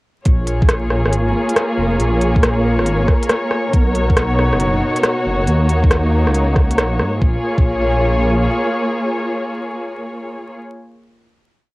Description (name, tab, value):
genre	future garage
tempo	138 BPM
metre	4/4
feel	swing 67% on 16ths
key	Bb phrygian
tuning	A4 = 439 Hz
part	muted studio string section	sustained chords	0.3-10.6 s	B2 to Db5	-18 LUFS	equal	sidechain pumping, cassette tape
part	dark detuned saw bass	bass	0.3-8.5 s	F1 to Ab2	-18 LUFS	equal	sidechain pumping
part	electronic kick drum	drums	0.3-7.7 s	none	-14 LUFS	equal	overdrive, cassette tape
part	organic electronic drum kit	drums	0.3-7.1 s	hi-hat, rim click	-18 LUFS	equal	cassette tape
part	flickering grainy texture	texture	1.0-7.2 s	Bb3 to Bb4	-27 LUFS	equal	built-in reverb, cassette tape
room	light reverb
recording	home recording on cassette, vinyl crackle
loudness	-14 LUFS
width	side -20 dB against mid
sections	0.3-7.2 groove; 7.2-10.7 final chord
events	none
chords	0.3 Bbm7; 3.7 Badd9; 5.5 Ebm7; 7.2 Bbm7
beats	| 0.26 0.69 1.13 1.56 | 2.00 2.43 2.87 3.30 | 3.73 4.17 4.60 5.04 | 5.47 5.91 6.34 6.78 | 7.21 7.65 8.08 8.52 | 8.95 9.39 9.82 10.26